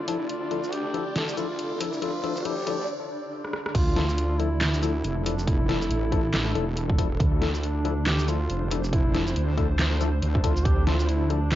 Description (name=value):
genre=deep dubstep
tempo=139 BPM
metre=4/4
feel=swing 59% on 16ths, half-time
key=D minor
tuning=A4 = 439 Hz
part: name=warm duduk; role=melody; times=0.0-11.6 s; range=D4 to A4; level=-32 LUFS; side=equal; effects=cassette tape, dub echo
part: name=granular cloud pad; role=sustained chords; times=0.0-11.6 s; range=D4 to D5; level=-34 LUFS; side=right 1 dB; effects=built-in reverb, cassette tape
part: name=wobble bass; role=bass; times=0.0-11.6 s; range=E1 to D2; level=-26 LUFS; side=right 1 dB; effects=chorus, high-pass filter
part: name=riser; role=sound effects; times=0.0-2.9 s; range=none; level=-37 LUFS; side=equal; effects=none
part: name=percussive organ stab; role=stabs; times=0.1-11.4 s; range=F3 to A4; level=-32 LUFS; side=left 9 dB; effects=chorus, cassette tape, dub echo
part: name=dubstep drum kit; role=drums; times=0.1-11.6 s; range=crash cymbal, handclaps, hi-hat, rim click, shaker, snare drum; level=-30 LUFS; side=equal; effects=none
part: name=electronic kick drum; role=drums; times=3.7-10.8 s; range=none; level=-24 LUFS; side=right 1 dB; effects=none
room=light reverb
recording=home recording on cassette, nothing above 7.5 kHz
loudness=-23 LUFS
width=side -13 dB against mid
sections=0.0-3.7 A section; 3.7-11.6 B section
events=build-up 0.0-3.7; riser 0.0-2.9; filter sweep on synth stab 0.0-3.7; break 2.9-3.7; drum fill 3.4-3.7; drop 3.7-11.6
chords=0.0 Dmadd9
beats=| 0.29 0.73 1.16 1.59 | 2.02 2.45 2.88 3.32 | 3.75 4.18 4.61 5.04 | 5.47 5.91 6.34 6.77 | 7.20 7.63 8.06 8.50 | 8.93 9.36 9.79 10.22 | 10.65 11.09 11.52